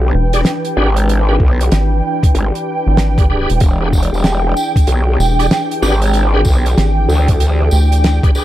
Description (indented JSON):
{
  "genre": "glitch hop",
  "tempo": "95 BPM",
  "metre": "4/4",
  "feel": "swing 63% on 16ths",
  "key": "E minor",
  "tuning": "A4 = 439 Hz",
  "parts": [
    { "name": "warm analog pad", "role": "sustained chords", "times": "0.0-8.4 s", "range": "E3 to B4", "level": "-22 LUFS", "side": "left 2 dB", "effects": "chorus, sidechain pumping" },
    { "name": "growl bass", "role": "bass", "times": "0.0-7.7 s", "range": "E1 to D2", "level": "-13 LUFS", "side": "equal", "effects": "chorus, tube saturation" },
    { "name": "ethereal airy pad", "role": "texture", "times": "0.0-8.4 s", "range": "G5", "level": "-22 LUFS", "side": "right 3 dB", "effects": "ensemble chorus, built-in reverb, sidechain pumping" },
    { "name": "rubbery square bass", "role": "bass", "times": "0.1-8.2 s", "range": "E1 to D2", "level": "-13 LUFS", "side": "equal", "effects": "none" },
    { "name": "bright tonewheel organ", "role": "stabs", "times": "0.3-8.4 s", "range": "D4 to D5", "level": "-21 LUFS", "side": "equal", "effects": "overdrive, chorus vibrato, fast rotary speaker, sidechain pumping, low-pass filter, tape echo" },
    { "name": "damped 70s drum kit", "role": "drums", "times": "0.3-8.3 s", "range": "hi-hat, rim click, snare drum", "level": "-18 LUFS", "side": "right 1 dB", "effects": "none" },
    { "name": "electronic kick drum", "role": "drums", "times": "1.4-8.3 s", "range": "none", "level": "-12 LUFS", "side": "equal", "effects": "none" },
    { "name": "tambourine", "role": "percussion", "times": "3.6-8.4 s", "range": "none", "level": "-29 LUFS", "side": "left 1 dB", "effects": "none" }
  ],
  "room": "small room ambience",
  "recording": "none",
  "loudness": "-11 LUFS",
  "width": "side -14 dB against mid",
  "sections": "0.0-8.4 A section",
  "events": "none",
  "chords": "0.0 E7#9",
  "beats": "0.46 | 1.09 1.72 2.35 2.98 | 3.61 4.24 4.88 5.51 | 6.14 6.77 7.40 8.03"
}